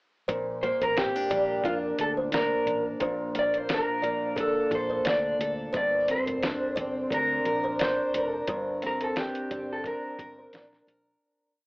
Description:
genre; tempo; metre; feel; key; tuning
indie pop, bedroom pop; 88 BPM; 4/4; swing 55% on 16ths; Bb major; A4 = 440 Hz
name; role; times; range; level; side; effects
kalimba; second line; 0.3-11.0 s; Bb4 to D5; -32 LUFS; equal; ensemble chorus, cassette tape, analog delay
picked steel-string acoustic guitar; accompaniment; 0.3-11.7 s; G2 to Bb4; -32 LUFS; equal; wide subtle chorus, warbly pitch drift, cassette tape
vintage muted fingered electric bass; bass; 0.3-11.1 s; F1 to F2; -44 LUFS; equal; none
lo-fi sampler-style drum kit; drums; 0.3-11.1 s; hi-hat, kick drum, snare drum; -32 LUFS; equal; cassette tape
electric guitar through a small old amp; melody; 0.6-10.8 s; F4 to D5; -28 LUFS; equal; lush chorus, cassette tape
room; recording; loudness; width
moderate booth ambience, RT60 0.2 s; home recording on cassette, AM radio sound; -25 LUFS; side -29 dB against mid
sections
0.3-11.2 verse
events
fade-out 8.5-11.2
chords
0.3 Bbmaj7; 5.7 Gm

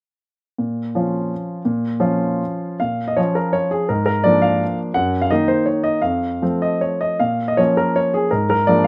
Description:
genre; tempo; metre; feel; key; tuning
classical, romantic triple-time dance for piano with dotted rhythms; 134-187 BPM; 3/4; rubato; Bb minor; A4 = 440 Hz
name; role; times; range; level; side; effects
warm grand piano; solo; 0.6-8.9 s; F2 to Gb5; -19 LUFS; equal; none
room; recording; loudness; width
light reverb; none; -19 LUFS; mono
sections
0.6-2.8 A section; 2.8-8.9 B section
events
none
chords
0.6 Bbm; 3.9 Bb7/Ab; 5.0 Ebm/Gb; 6.0 F; 7.2 Bbm; 8.3 Bb7/Ab

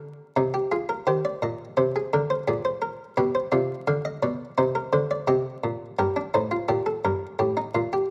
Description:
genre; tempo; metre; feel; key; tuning
classical, baroque-style 3-part fugue for harpsichord; 86 BPM; 4/4; straight; C minor; A4 = 436 Hz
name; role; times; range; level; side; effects
buff-stop harpsichord; solo; 0.0-8.1 s; G2 to F5; -26 LUFS; equal; none
room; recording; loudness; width
moderate recital hall reverb, RT60 1.6 s; close, detailed microphones, vinyl crackle; -26 LUFS; mono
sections
0.0-8.1 A section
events
none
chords
0.4 Cm; 1.8 Bb13; 3.2 G7/B; 4.6 Cm; 6.0 Gm; 7.4 A7(b5, no3)

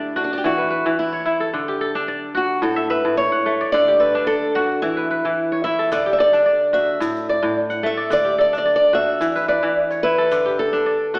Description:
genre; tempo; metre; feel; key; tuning
west african traditional, West African string and xylophone music; 109 BPM; 4/4; straight; D major; A4 = 440 Hz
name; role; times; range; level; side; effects
picked old ladder-braced acoustic guitar; melody; 0.0-11.2 s; D4 to E5; -18 LUFS; equal; none
kora; arpeggios; 0.0-11.2 s; A2 to F#5; -21 LUFS; equal; none
tube shaker; percussion; 5.9-10.8 s; none; -48 LUFS; right 2 dB; none
room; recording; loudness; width
wet recital hall reverb, RT60 1.4 s; recorded in a church or concert hall, AM radio sound; -16 LUFS; side -28 dB against mid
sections
0.0-11.2 A section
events
none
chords
0.4 E5; 1.5 D; 2.6 A; 3.7 D; 4.8 E5; 5.9 D; 7.0 Dadd9/A; 8.1 D; 9.2 E5; 10.3 D5

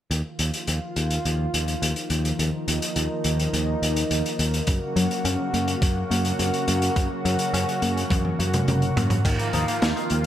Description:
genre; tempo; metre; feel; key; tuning
synthwave; 105 BPM; 4/4; straight; Eb minor; A4 = 440 Hz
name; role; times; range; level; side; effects
lush unison pad; sustained chords; 0.1-10.3 s; Db3 to Gb4; -27 LUFS; equal; chorus, sidechain pumping
picked electric bass; bass; 0.1-10.3 s; Gb1 to Gb2; -26 LUFS; equal; low-pass filter
raw garage drum kit; drums; 0.1-10.2 s; crash cymbal, hi-hat, snare drum, toms; -27 LUFS; equal; none
analog pluck; arpeggios; 4.7-10.3 s; Db3 to Gb4; -30 LUFS; left 2 dB; chorus, digital delay
electronic kick drum; drums; 4.7-9.4 s; none; -23 LUFS; equal; none
clean electric guitar; riff; 9.2-10.1 s; Eb3 to Eb4; -31 LUFS; left 1 dB; wide subtle chorus, low-pass filter, digital delay
room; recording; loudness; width
wet plate reverb, RT60 1.6 s, small room reverb; bright 1980s-style digital production; -21 LUFS; side -11 dB against mid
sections
0.1-9.2 A section; 9.2-10.3 B section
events
filter sweep on analog synth pad 0.1-9.2; drum fill 8.1-9.2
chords
0.1 Ebsus2; 4.7 Gb; 9.2 Ebsus2

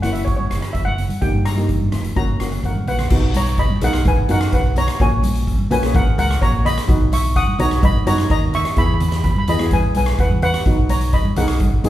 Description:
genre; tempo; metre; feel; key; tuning
calypso; 127 BPM; 4/4; straight; B major; A4 = 440 Hz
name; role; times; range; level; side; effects
steel pan; melody; 0.0-11.6 s; A#4 to D#6; -22 LUFS; equal; none
steel pan; accompaniment; 0.0-11.9 s; A#3 to G#4; -25 LUFS; equal; none
fingered electric bass; bass; 0.0-11.9 s; E#1 to G2; -21 LUFS; equal; none
street-band drum kit; drums; 0.0-11.9 s; crash cymbal, hi-hat, kick drum, rim click; -19 LUFS; equal; none
congas; percussion; 0.0-11.9 s; none; -28 LUFS; right 1 dB; none
room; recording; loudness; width
moderate large studio reverb, RT60 1.4 s; band playing live in one room; -15 LUFS; side -13 dB against mid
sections
0.0-3.1 A section; 3.1-11.9 B section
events
drum fill 2.8-3.1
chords
0.0 F#7; 1.2 D#/G; 2.2 F#; 3.1 B; 5.0 F#add9/A#; 6.9 B; 8.8 E; 10.7 B

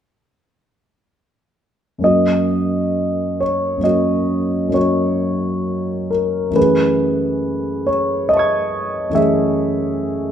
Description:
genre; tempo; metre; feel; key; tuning
classical, impressionist solo piano; 68 BPM; 5/4; rubato; unclear; A4 = 439 Hz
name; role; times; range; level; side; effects
warm concert grand piano; solo; 2.0-10.3 s; F#2 to G#6; -16 LUFS; equal; none
room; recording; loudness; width
moderate large studio reverb, RT60 1.2 s; none; -16 LUFS; side -9 dB against mid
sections
2.1-10.3 A section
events
none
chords
2.1 F#6; 6.6 Amaj7/F#

